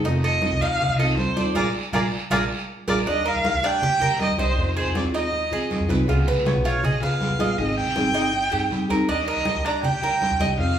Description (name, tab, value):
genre	latin, Cuban son and guajira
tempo	160 BPM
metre	4/4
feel	straight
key	Eb major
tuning	A4 = 440 Hz
part	nylon-string guitar	accompaniment	0.0-10.8 s	C3 to Ab4	-28 LUFS	left 1 dB	none
part	Cuban tres	arpeggios	0.0-10.8 s	D4 to Eb5	-27 LUFS	right 2 dB	none
part	upright bass	bass	0.0-10.8 s	F1 to F3	-26 LUFS	equal	none
part	congas	percussion	0.0-10.8 s	none	-28 LUFS	equal	none
part	guiro	percussion	0.0-10.8 s	none	-36 LUFS	right 4 dB	none
part	clear erhu	melody	0.2-10.8 s	C5 to Bb5	-24 LUFS	right 1 dB	none
room	wet large studio reverb, RT60 1.0 s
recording	band playing live in one room, small room ambience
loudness	-20 LUFS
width	side -9 dB against mid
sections	0.0-3.1 A section; 3.1-10.8 B section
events	band accent 1.6-3.1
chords	0.0 F7; 1.6 Bb7; 3.1 Ebmaj7; 4.6 Fm7; 6.1 Db7; 7.6 Abmaj7; 9.1 Ebmaj7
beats	| 0.05 0.42 0.80 1.18 | 1.56 1.94 2.31 2.69 | 3.07 3.44 3.82 4.20 | 4.57 4.95 5.33 5.70 | 6.08 6.45 6.83 7.21 | 7.58 7.96 8.33 8.71 | 9.09 9.46 9.84 10.21 | 10.59